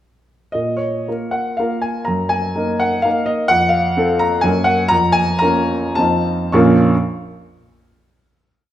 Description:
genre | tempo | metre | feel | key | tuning
classical, romantic triple-time dance for piano with dotted rhythms | 101-134 BPM | 3/4 | rubato | Bb minor | A4 = 440 Hz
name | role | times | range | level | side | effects
warm grand piano | solo | 0.5-6.9 s | Bb1 to Db6 | -14 LUFS | equal | none
room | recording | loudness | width
wet recital hall reverb, RT60 1.2 s | faint mains hum | -14 LUFS | side -12 dB against mid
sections
0.5-6.5 A section; 6.5-8.1 final chord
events
slowing down 2.8-6.5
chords
0.5 Bbm; 2.1 Ebm/Gb; 3.5 F; 4.5 Gb; 4.9 Bbm/F; 6.0 F7; 6.5 Bbm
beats
| 0.54 1.07 1.59 | 2.07 2.57 3.06 | 3.52 3.98 4.46 | 4.92 5.43 5.99 | 6.55

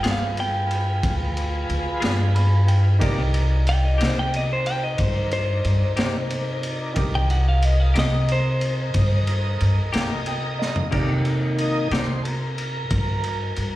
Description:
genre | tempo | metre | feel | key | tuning
slow blues | 61 BPM (dotted quarters) | 12/8 | straight | C minor | A4 = 440 Hz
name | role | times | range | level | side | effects
clean electric guitar | melody | 0.0-9.6 s | C5 to G5 | -27 LUFS | equal | slapback echo, tape echo
bright upright piano | accompaniment | 0.0-13.8 s | Eb4 to D6 | -34 LUFS | right 4 dB | slapback echo
clean electric guitar | accompaniment | 0.0-12.1 s | C3 to Ab4 | -29 LUFS | left 6 dB | tremolo, slapback echo
tonewheel organ | sustained chords | 0.0-13.8 s | Eb3 to Eb5 | -30 LUFS | equal | slow rotary speaker, chorus vibrato
upright bass | bass | 0.0-13.7 s | C2 to C3 | -21 LUFS | equal | none
crunchy breakbeat drum kit | drums | 0.0-13.7 s | crash cymbal, kick drum, ride cymbal, snare drum, toms | -27 LUFS | equal | none
room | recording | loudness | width
light reverb | live gig heard through the venue's PA, recital hall reverb | -19 LUFS | side -16 dB against mid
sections
0.0-10.9 A section; 10.9-13.8 A section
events
clean electric guitar solo 0.0-10.9; upright piano fill 2.0-3.0, 9.9-10.9; drum fill 10.6-10.9; tonewheel organ solo 10.9-13.8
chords
0.0 G7b9; 3.0 Cm7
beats
0.04 1.03 2.02 | 3.01 4.00 4.99 5.98 | 6.96 7.95 8.94 9.93 | 10.92 11.91 12.90

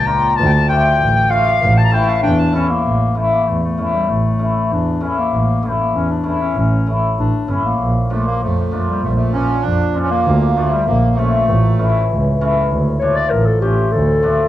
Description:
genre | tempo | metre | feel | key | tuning
klezmer | 97 BPM | 2/4 | straight | A phrygian dominant | A4 = 441 Hz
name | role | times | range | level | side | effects
dark clarinet | melody | 0.0-14.5 s | G3 to Bb5 | -19 LUFS | left 4 dB | none
accordion | second line | 0.0-2.7, 8.1-12.0 s | G3 to Bb5 | -23 LUFS | right 7 dB | cassette tape
dark double bass | bass | 0.0-14.3 s | G1 to F2 | -17 LUFS | right 1 dB | none
cimbalom | accompaniment | 0.1-14.5 s | E3 to F4 | -20 LUFS | left 2 dB | cassette tape
room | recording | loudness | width
light reverb | home recording on cassette | -13 LUFS | side -13 dB against mid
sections
0.0-2.8 A section; 2.8-12.7 B section; 12.7-14.5 C section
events
clarinet solo 0.0-2.8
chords
0.4 Dm; 1.6 A; 7.8 Bb; 10.3 Dm; 11.5 A; 12.7 Dm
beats
| 0.37 0.99 | 1.61 2.23 | 2.85 3.46 | 4.08 4.70 | 5.32 5.94 | 6.55 7.17 | 7.79 8.41 | 9.02 9.64 | 10.25 10.87 | 11.48 12.09 | 12.70 13.31 | 13.93

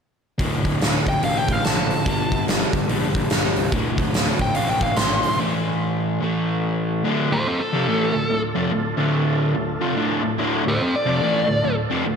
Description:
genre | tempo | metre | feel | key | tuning
blues rock power trio and southern rock | 144 BPM | 4/4 | swing 62% on 8ths | D minor | A4 = 441 Hz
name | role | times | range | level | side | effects
overdriven semi-hollow guitar | riff | 0.4-12.2 s | D2 to A3 | -22 LUFS | equal | none
fuzz picked electric bass | bass | 0.4-5.2 s | D1 to C2 | -28 LUFS | equal | overdrive
huge arena drum kit | drums | 0.4-5.3 s | hi-hat, kick drum, snare drum | -22 LUFS | equal | none
dark smooth lead guitar | melody | 1.1-11.8 s | C4 to C6 | -24 LUFS | equal | overdrive, slapback echo, analog delay
overdriven tonewheel organ | sustained chords | 7.0-12.2 s | A3 to Bb4 | -30 LUFS | right 2 dB | slow rotary speaker, chorus vibrato
room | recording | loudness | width
moderate lush hall reverb, RT60 2.1 s | big arena sound | -19 LUFS | side -6 dB against mid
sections
0.4-7.0 A section; 7.0-12.2 B section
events
break 5.4-7.0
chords
0.4 D5; 2.1 Gm; 3.7 D5; 5.4 A5; 7.0 Dm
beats
| 0.39 0.80 1.22 1.64 | 2.05 2.47 2.89 3.30 | 3.72 4.14 4.55 4.97 | 5.38 5.80 6.22 6.63 | 7.05 7.47 7.88 8.30 | 8.71 9.13 9.55 9.96 | 10.38 10.80 11.22 11.63 | 12.05

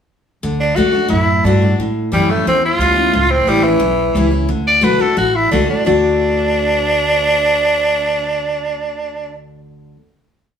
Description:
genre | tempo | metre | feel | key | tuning
rockabilly | 177 BPM | 4/4 | straight | D major | A4 = 441 Hz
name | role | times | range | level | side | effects
picked steel-string acoustic guitar | accompaniment | 0.4-10.0 s | E2 to F#4 | -18 LUFS | left 3 dB | none
upright bass | bass | 0.4-9.9 s | A1 to A2 | -20 LUFS | right 1 dB | none
raspy tenor saxophone | melody | 0.6-9.3 s | E3 to D5 | -15 LUFS | right 1 dB | none
room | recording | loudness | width
moderate stone room reverb, RT60 1.0 s | band playing live in one room, small room ambience | -12 LUFS | side -7 dB against mid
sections
0.4-5.9 A section; 5.9-8.6 final chord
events
none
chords
0.4 D; 1.8 A7; 4.5 D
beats
| 0.43 0.77 1.11 1.45 | 1.78 2.12 2.46 2.80 | 3.13 3.47 3.81 4.15 | 4.49 4.83 5.17 5.51 | 5.85 6.19 6.53 6.87 | 7.21 7.55 7.89 8.23

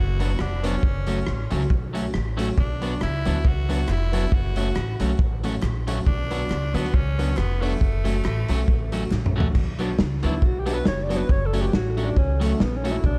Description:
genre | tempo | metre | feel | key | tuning
ska | 138 BPM | 4/4 | swing 56% on 8ths | B minor | A4 = 439 Hz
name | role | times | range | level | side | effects
raspy tenor saxophone | melody | 0.0-9.1 s | A3 to F#4 | -35 LUFS | equal | tape echo
upright bass | bass | 0.0-13.2 s | E#1 to D2 | -27 LUFS | equal | none
electric guitar at the edge of break-up | accompaniment | 0.2-13.0 s | F#3 to F#4 | -35 LUFS | equal | none
dark upright piano | stabs | 0.2-13.0 s | F#3 to F#4 | -34 LUFS | equal | none
raw garage drum kit | drums | 0.2-13.2 s | crash cymbal, hi-hat, kick drum, rim click, snare drum, toms | -27 LUFS | equal | none
group handclap | percussion | 3.0-9.2 s | none | barely audible | none | none
breathy alto saxophone | melody | 10.3-13.2 s | A3 to D5 | -30 LUFS | equal | tape echo
room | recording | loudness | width
light reverb, studio reverb | dark, warm production | -23 LUFS | mono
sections
0.0-9.6 A section; 9.6-13.2 B section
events
drum fill 9.1-9.6; alto saxophone solo 9.6-13.2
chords
0.0 Bm; 0.8 F#m; 2.6 Bm; 4.3 F#m; 6.1 Bm; 7.8 F#m; 9.6 Bm; 11.3 F#m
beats
0.40 | 0.83 1.27 1.70 2.14 | 2.58 3.01 3.45 3.88 | 4.32 4.76 5.19 5.63 | 6.07 6.50 6.94 7.37 | 7.81 8.24 8.68 9.12 | 9.55 9.99 10.42 10.86 | 11.29 11.73 12.17 12.60 | 13.04

